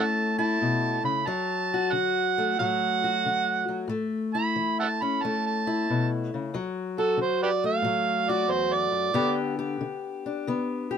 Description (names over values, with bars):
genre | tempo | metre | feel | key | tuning
acoustic country blues, solo or duo | 91 BPM | 4/4 | swing 68% on 8ths | D major | A4 = 439 Hz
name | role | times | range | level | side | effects
overdriven harmonica | melody | 0.0-9.4 s | G4 to B5 | -26 LUFS | right 6 dB | none
fingerpicked steel-string acoustic guitar | accompaniment | 0.0-11.0 s | D2 to G4 | -27 LUFS | left 4 dB | none
room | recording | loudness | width
light reverb | minimal, uncompressed stereo recording | -24 LUFS | side -7 dB against mid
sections
0.0-6.5 A section; 6.5-11.0 B section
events
harmonica solo 6.5-11.0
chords
0.0 A; 1.2 D; 3.9 A; 6.5 D; 9.1 G